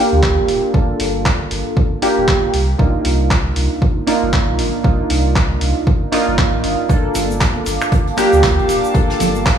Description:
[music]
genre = deep house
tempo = 117 BPM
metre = 4/4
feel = swing 59% on 16ths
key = G minor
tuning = A4 = 440 Hz
[part]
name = warm analog keys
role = stabs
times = 0.0-9.6 s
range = Bb3 to A4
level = -17 LUFS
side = right 1 dB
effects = chorus, sidechain pumping, low-pass filter, tape echo
[part]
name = warm sub bass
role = bass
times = 0.1-9.6 s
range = D1 to D2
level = -20 LUFS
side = equal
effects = tube saturation, sidechain pumping
[part]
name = dusty soul sampler-style drum kit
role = drums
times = 0.2-9.6 s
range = finger snaps, handclaps, hi-hat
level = -22 LUFS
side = equal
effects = none
[part]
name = electronic kick drum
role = drums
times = 0.2-9.6 s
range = none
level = -16 LUFS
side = equal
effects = none
[part]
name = warbly tape-like pad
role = sustained chords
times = 7.5-9.6 s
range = F5 to D6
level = -24 LUFS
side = right 2 dB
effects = chorus, built-in reverb, phaser, sidechain pumping
[part]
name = jazz brush drum kit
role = drums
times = 6.9-9.6 s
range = hi-hat, snare drum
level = -30 LUFS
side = right 2 dB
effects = sidechain pumping on hats, high-pass filter on hats, high-pass filter on snare, high-pass filter on room
[part]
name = egg shaker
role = percussion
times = 6.9-9.6 s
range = none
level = -34 LUFS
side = left 4 dB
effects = none
[part]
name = congas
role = percussion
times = 7.2-9.4 s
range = none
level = -25 LUFS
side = right 5 dB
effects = sidechain pumping on perc
[sound]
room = studio reverb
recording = none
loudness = -13 LUFS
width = side -8 dB against mid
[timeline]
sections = 0.0-9.6 A section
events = filter sweep on synth keys 0.0-9.6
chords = 0.0 Gm9; 2.5 Cm11; 6.9 Gm9

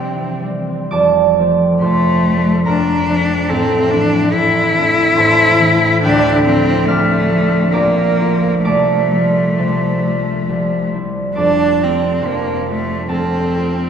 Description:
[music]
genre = classical, romantic duo for cello and harp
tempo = 56-74 BPM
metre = 3/4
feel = rubato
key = F major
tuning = A4 = 439 Hz
[part]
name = rich cello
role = melody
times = 0.0-13.9 s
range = A3 to E4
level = -16 LUFS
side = left 2 dB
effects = none
[part]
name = concert harp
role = accompaniment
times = 0.0-13.9 s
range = D1 to G6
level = -14 LUFS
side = right 1 dB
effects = none
[sound]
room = wet cathedral reverb, RT60 7.5 s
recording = recorded in a church or concert hall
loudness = -12 LUFS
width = side -7 dB against mid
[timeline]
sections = 0.9-13.9 A section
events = none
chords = 0.0 C; 0.9 F; 3.5 Am; 6.0 Dm7; 7.7 Bb; 8.6 F/C; 10.5 C; 11.4 F

